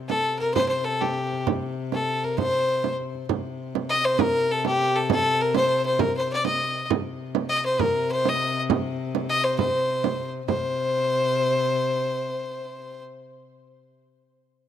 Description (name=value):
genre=medieval dance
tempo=133 BPM (dotted quarters)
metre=6/8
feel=straight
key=C dorian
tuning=A4 = 440 Hz
part: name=clear viola da gamba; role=drone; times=0.0-13.1 s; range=C3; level=-32 LUFS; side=left 5 dB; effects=stereo widening
part: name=rich fiddle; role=melody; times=0.1-13.0 s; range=G4 to Eb5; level=-23 LUFS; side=left 1 dB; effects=none
part: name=frame drum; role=percussion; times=0.1-10.6 s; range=none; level=-26 LUFS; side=right 10 dB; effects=none
room=light reverb, studio reverb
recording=dry, close 1970s-style studio recording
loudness=-22 LUFS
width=side -9 dB against mid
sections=0.0-3.3 A section; 3.3-10.5 B section; 10.5-12.3 C section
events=none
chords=none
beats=0.10 | 0.56 1.01 | 1.47 1.92 | 2.38 2.83 | 3.29 3.74 | 4.20 4.65 | 5.10 5.55 | 6.00 6.45 | 6.90 7.35 | 7.80 8.25 | 8.70 9.15 | 9.60 10.04 | 10.49 10.94 | 11.38 11.83